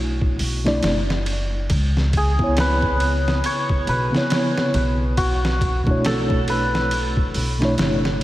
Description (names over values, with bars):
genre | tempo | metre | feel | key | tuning
trip hop | 69 BPM | 4/4 | swing 59% on 16ths | unclear | A4 = 440 Hz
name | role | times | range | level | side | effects
santur | melody | 0.0-8.2 s | F#4 to C#5 | -25 LUFS | equal | dub echo
mellow reed electric piano | accompaniment | 0.0-8.2 s | B2 to D5 | -23 LUFS | equal | tremolo, tape echo
upright bass | bass | 0.0-8.2 s | F#1 to C#2 | -22 LUFS | equal | tube saturation
trip hop sampler-style drum kit | drums | 0.2-8.2 s | hi-hat, kick drum, ride cymbal, snare drum | -24 LUFS | equal | none
room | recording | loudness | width
wet lush hall reverb, RT60 2.8 s | dreamy mix soaked in reverb, vinyl crackle | -18 LUFS | side -15 dB against mid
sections
0.0-8.2 A section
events
none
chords
0.0 Bm11; 1.7 C#m7; 5.2 Bm11